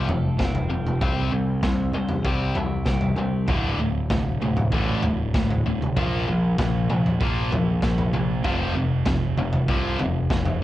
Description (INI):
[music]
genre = quiet-loud alternative rock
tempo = 97 BPM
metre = 4/4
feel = straight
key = unclear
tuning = A4 = 438 Hz
[part]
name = twelve-string electric guitar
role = arpeggios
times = 0.0-3.5 s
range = C3 to C5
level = -32 LUFS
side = right 5 dB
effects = cassette tape, analog delay
[part]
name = tight distorted guitar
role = riff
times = 0.0-10.6 s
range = D2 to C4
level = -26 LUFS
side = left 4 dB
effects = distortion, cassette tape
[part]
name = growling picked electric bass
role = bass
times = 0.0-10.6 s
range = D1 to C2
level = -26 LUFS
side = equal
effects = overdrive
[part]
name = raw garage drum kit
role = drums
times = 0.1-10.6 s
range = kick drum, snare drum, toms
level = -26 LUFS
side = equal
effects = none
[part]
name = thick fuzz guitar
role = riff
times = 3.5-10.6 s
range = D2 to Bb3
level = -29 LUFS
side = right 8 dB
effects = distortion, cassette tape
[sound]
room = small room ambience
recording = home recording on cassette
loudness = -21 LUFS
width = side -14 dB against mid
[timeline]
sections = 0.0-10.6 A section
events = none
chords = 0.0 F; 1.0 C; 3.5 D5; 6.0 Bb5; 8.4 F5